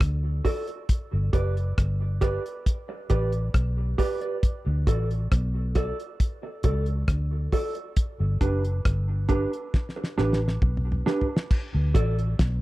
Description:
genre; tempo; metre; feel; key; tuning
roots reggae; 68 BPM; 4/4; straight; D major; A4 = 439 Hz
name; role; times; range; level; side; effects
vintage muted fingered electric bass; bass; 0.0-12.6 s; F#1 to D2; -25 LUFS; equal; none
cloth-damped thuddy drum kit; drums; 0.0-12.6 s; crash cymbal, hi-hat, kick drum, rim click, snare drum, toms; -23 LUFS; equal; none
mellow electric guitar; accompaniment; 0.4-12.2 s; D4 to D5; -30 LUFS; right 3 dB; spring reverb, dub echo
room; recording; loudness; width
little or no reverb; dry, close 1970s-style studio recording; -23 LUFS; side -18 dB against mid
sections
0.0-11.5 A section; 11.5-12.6 B section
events
drum fill 9.7-11.5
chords
0.0 D; 0.9 G; 4.4 D; 8.0 G; 11.5 D

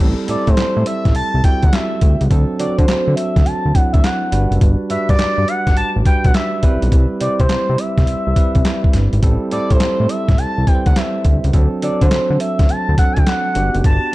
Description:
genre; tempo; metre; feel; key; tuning
R&B, new jack swing; 104 BPM; 4/4; swing 67% on 16ths; A dorian; A4 = 440 Hz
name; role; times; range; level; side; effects
bell-like tine electric piano; accompaniment; 0.0-14.1 s; F#3 to C5; -22 LUFS; right 3 dB; none
fat analog bass; bass; 0.0-14.0 s; F#1 to D3; -17 LUFS; equal; none
expressive synth lead; melody; 0.3-14.1 s; C5 to A5; -21 LUFS; equal; chorus
boom bap sampler-style drum kit; drums; 0.3-14.0 s; handclaps, hi-hat, kick drum, snare drum; -15 LUFS; equal; vintage 12-bit sampler grit, gated reverb
room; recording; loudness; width
digital ambience; none; -13 LUFS; side -18 dB against mid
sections
0.0-14.1 A section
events
none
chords
0.0 Am7; 2.3 D7; 4.3 Gmaj7; 6.6 Cmaj7; 9.2 Am7; 11.5 D7; 13.6 Gmaj7

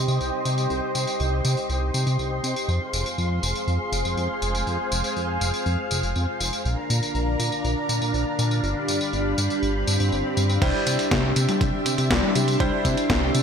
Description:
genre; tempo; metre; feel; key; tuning
italo disco; 121 BPM; 4/4; straight; unclear; A4 = 440 Hz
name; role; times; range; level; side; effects
string machine, full ensemble; sustained chords; 0.0-13.4 s; D4 to C6; -26 LUFS; equal; ensemble chorus
chorused synth bass; bass; 0.0-13.4 s; F1 to C3; -25 LUFS; equal; none
gated 80s digital drum machine; drums; 0.1-13.4 s; crash cymbal, hi-hat, snare drum, tambourine, toms; -27 LUFS; left 2 dB; gated reverb, gated reverb snare
swell; sound effects; 9.8-10.6 s; none; -32 LUFS; left 3 dB; none
clear concert grand piano; stabs; 10.6-13.4 s; G3 to D5; -27 LUFS; right 1 dB; analog chorus, ping-pong delay
electronic kick drum; drums; 10.6-13.2 s; none; -26 LUFS; equal; overdrive
room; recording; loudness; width
moderate lush hall reverb, RT60 1.8 s; bright 1980s-style digital production; -21 LUFS; side -7 dB against mid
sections
0.0-10.6 A section; 10.6-13.4 B section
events
swell 9.8-10.6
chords
0.0 Cm; 2.7 Fm; 6.7 Bb; 8.6 G7; 10.6 Cadd9

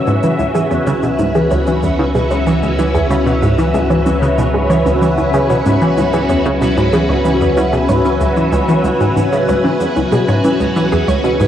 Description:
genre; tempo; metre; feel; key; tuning
ambient, sequencer-driven space music; 94 BPM; 4/4; straight; C# minor; A4 = 440 Hz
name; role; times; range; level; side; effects
string machine, full ensemble; sustained chords; 0.0-11.5 s; C#4 to E5; -15 LUFS; equal; phaser, ensemble chorus
wide unison pluck; arpeggios; 0.0-11.3 s; C#4 to G#5; -21 LUFS; right 1 dB; auto-pan, tape echo
analog drone; bass; 0.9-11.5 s; C#2; -22 LUFS; equal; chorus
bubbling stepped-filter texture; texture; 2.2-11.5 s; G#5; -32 LUFS; right 5 dB; chorus, built-in reverb
analog pluck; riff; 0.1-11.5 s; C#2 to E3; -16 LUFS; equal; chorus, tape echo
shaker and congas; percussion; 0.1-11.5 s; none; -28 LUFS; equal; tape echo
room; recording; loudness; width
wet concert hall reverb, RT60 2.4 s; worn, warbling old tape, cassette tape, warbly pitch drift; -12 LUFS; side -10 dB against mid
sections
0.0-11.5 A section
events
fade-in on synth texture 0.0-11.5; filter sweep on synth arpeggio sound 0.0-11.5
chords
0.0 C#m

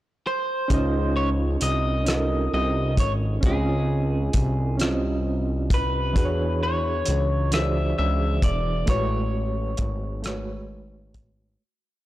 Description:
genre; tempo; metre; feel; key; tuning
slow six-eight R&B; 44 BPM (dotted quarters); 6/8; straight; Db major; A4 = 440 Hz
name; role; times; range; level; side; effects
electric guitar at the edge of break-up; melody; 0.3-11.1 s; Ab4 to E5; -28 LUFS; left 1 dB; spring reverb
barky reed electric piano; accompaniment; 0.7-11.6 s; E3 to Eb5; -28 LUFS; right 2 dB; fast tremolo
fat analog bass; bass; 0.7-11.6 s; E1 to E2; -24 LUFS; equal; transformer saturation
cloth-damped thuddy drum kit; drums; 0.7-11.4 s; hi-hat, kick drum, rim click; -24 LUFS; equal; soft clipping on snare
room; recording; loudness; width
studio ambience; blown-out, overdriven recording, overdrive; -21 LUFS; side -15 dB against mid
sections
0.0-0.7 pickup bar; 0.7-11.6 verse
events
fade-out 8.9-11.6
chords
0.0 N.C.; 0.7 Dbmaj9; 6.2 E13; 8.9 Amaj13

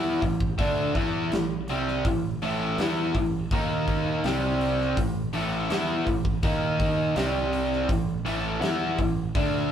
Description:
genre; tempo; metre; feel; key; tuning
blues rock power trio and southern rock; 82 BPM; 4/4; straight; unclear; A4 = 439 Hz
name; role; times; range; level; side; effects
cranked stack guitar; riff; 0.0-9.7 s; A2 to E4; -25 LUFS; equal; overdrive, spring reverb
growling picked electric bass; bass; 0.0-9.7 s; A1 to E2; -32 LUFS; equal; overdrive
big rock drum kit; drums; 0.2-9.5 s; hi-hat, kick drum, snare drum; -29 LUFS; equal; none
room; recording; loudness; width
light reverb; band playing live in one room; -23 LUFS; side -9 dB against mid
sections
0.0-9.7 A section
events
none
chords
0.0 A5; 3.5 D#5; 4.2 C5; 5.0 A5; 6.4 D#5; 7.2 C5; 7.9 A5

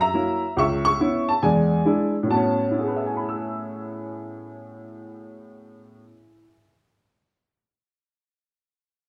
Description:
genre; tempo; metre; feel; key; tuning
solo jazz; 140 BPM; 4/4; swing 66% on 8ths; A major; A4 = 440 Hz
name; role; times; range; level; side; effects
warm upright piano; solo; 0.0-7.0 s; C#2 to E6; -24 LUFS; equal; none
room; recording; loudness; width
wet small room reverb, RT60 0.5 s; band playing live in one room; -23 LUFS; mono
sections
0.0-2.3 A section; 2.3-5.7 B section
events
none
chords
0.0 F#7; 0.6 C#m7; 1.4 E7; 2.3 A69

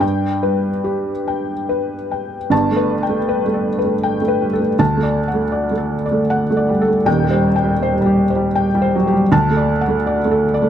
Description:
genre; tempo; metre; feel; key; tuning
neoclassical minimalist piano; 71-84 BPM; 3/4; rubato; G major; A4 = 441 Hz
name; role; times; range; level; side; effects
felt-muted upright piano; solo; 0.0-10.7 s; Eb1 to A5; -15 LUFS; equal; none
room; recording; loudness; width
light reverb; close, detailed microphones; -15 LUFS; side -9 dB against mid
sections
0.0-2.5 A section; 2.5-10.7 B section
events
none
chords
0.0 G; 2.5 Gadd9; 4.8 D; 7.1 Cm/Eb; 9.3 D

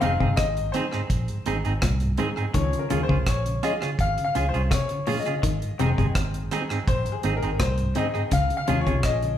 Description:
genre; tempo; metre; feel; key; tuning
roots reggae; 83 BPM; 4/4; straight; Ab major; A4 = 439 Hz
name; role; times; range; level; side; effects
mellow tonewheel organ; accompaniment; 0.0-9.3 s; Ab2 to Db4; -32 LUFS; equal; slow rotary speaker
semi-hollow electric guitar; accompaniment; 0.0-8.9 s; C4 to Ab4; -30 LUFS; right 6 dB; spring reverb
semi-hollow electric guitar; arpeggios; 0.0-9.0 s; Ab2 to Eb3; -28 LUFS; left 4 dB; none
bright upright piano; stabs; 0.0-9.4 s; Eb3 to F5; -28 LUFS; left 4 dB; none
vintage muted fingered electric bass; bass; 0.0-9.4 s; F1 to Eb2; -27 LUFS; right 1 dB; none
deep reggae drum kit; drums; 0.0-9.4 s; hi-hat, kick drum, rim click; -27 LUFS; right 1 dB; none
room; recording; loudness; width
moderate large studio reverb, RT60 0.8 s; band playing live in one room; -22 LUFS; side -10 dB against mid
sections
0.0-9.4 A section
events
upright piano solo 0.0-9.4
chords
0.0 Ab; 2.5 Db; 5.4 Ab; 8.3 Db

